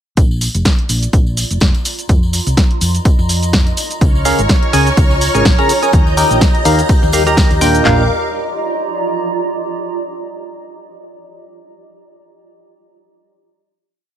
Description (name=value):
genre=piano house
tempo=125 BPM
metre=4/4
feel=swing 56% on 16ths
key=unclear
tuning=A4 = 439 Hz
part: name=hollow-body short-scale fingered electric bass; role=bass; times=0.2-8.1 s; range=F1 to F2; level=-17 LUFS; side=equal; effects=sidechain pumping
part: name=punchy analog drum machine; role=drums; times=0.2-8.0 s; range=handclaps, kick drum, snare drum, toms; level=-12 LUFS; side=equal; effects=none
part: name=punchy analog drum machine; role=drums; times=0.2-7.8 s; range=hi-hat, shaker, snare drum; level=-18 LUFS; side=equal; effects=none
part: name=tambourine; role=percussion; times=0.2-7.8 s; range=none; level=-29 LUFS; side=left 4 dB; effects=none
part: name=granular cloud pad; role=texture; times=1.1-9.7 s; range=F4 to Bb5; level=-22 LUFS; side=right 2 dB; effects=built-in reverb, sidechain pumping
part: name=string machine, violins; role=sustained chords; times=4.0-8.1 s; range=Bb4 to G6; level=-20 LUFS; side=equal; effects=ensemble chorus, sidechain pumping
part: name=percussive organ stab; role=riff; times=4.3-8.1 s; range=Bb2 to Bb5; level=-15 LUFS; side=equal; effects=chorus, phaser, sidechain pumping, ping-pong delay
room=light reverb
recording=none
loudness=-11 LUFS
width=side -10 dB against mid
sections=0.2-7.9 groove; 7.9-9.8 final chord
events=fade-in on ambient pad 0.2-7.9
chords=0.2 Bb; 1.9 F7sus4; 3.8 Db6; 5.9 Eb; 7.9 Bb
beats=| 0.17 0.65 1.13 1.61 | 2.09 2.57 3.05 3.53 | 4.01 4.49 4.97 5.45 | 5.93 6.41 6.89 7.37 | 7.85 8.33 8.81 9.29